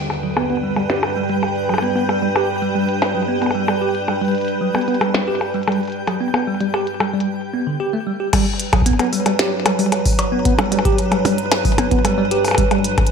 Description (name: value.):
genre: IDM.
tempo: 113 BPM.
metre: 4/4.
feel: straight.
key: G major.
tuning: A4 = 441 Hz.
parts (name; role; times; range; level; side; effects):
icy glass pad; sustained chords; 0.0-13.1 s; G2 to B4; -22 LUFS; right 2 dB; chorus, built-in reverb, vintage 12-bit sampler grit.
twinkling granular texture; texture; 0.5-7.3 s; G4 to G5; -28 LUFS; equal; built-in reverb.
glitchy drum kit; drums; 0.1-13.1 s; crash cymbal, hi-hat, percussion blips, snare drum; -22 LUFS; left 2 dB; low-pass filter on hats, low-pass filter on perc, low-pass filter on snare, low-pass filter on cymbals, low-pass filter on room, ping-pong delay.
bell-like tine electric piano; arpeggios; 0.2-12.8 s; D3 to G4; -20 LUFS; right 1 dB; fast stereo tremolo, low-pass filter, ping-pong delay.
electronic kick drum; drums; 8.3-13.1 s; none; -19 LUFS; equal; none.
room: moderate echo chamber reverb, RT60 2.1 s.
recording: none.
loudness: -16 LUFS.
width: side -6 dB against mid.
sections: 0.0-8.3 A section; 8.3-13.1 B section.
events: filter sweep on tine electric piano 0.0-8.3; break 7.3-8.3.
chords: 0.0 G; 8.3 Gmaj7.